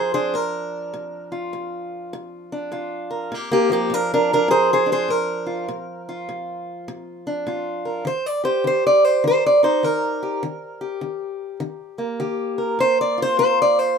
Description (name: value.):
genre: acoustic country blues, solo or duo.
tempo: 101 BPM.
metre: 4/4.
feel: swing 64% on 8ths.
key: Bb mixolydian.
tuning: A4 = 440 Hz.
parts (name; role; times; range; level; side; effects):
fingerpicked acoustic archtop guitar; solo; 0.0-14.0 s; Bb2 to D5; -19 LUFS; equal; none.
room: light reverb.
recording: minimal, uncompressed stereo recording.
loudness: -19 LUFS.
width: side -6 dB against mid.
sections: 0.0-14.0 A section.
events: steel-string acoustic guitar solo 0.0-14.0.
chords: 0.0 Bb; 8.1 Eb; 12.8 Bb.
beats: 0.34 | 0.94 1.53 2.13 2.72 | 3.31 3.91 4.50 5.09 | 5.69 6.28 6.87 7.46 | 8.06 8.65 9.24 9.83 | 10.43 11.02 11.61 12.20 | 12.80 13.39.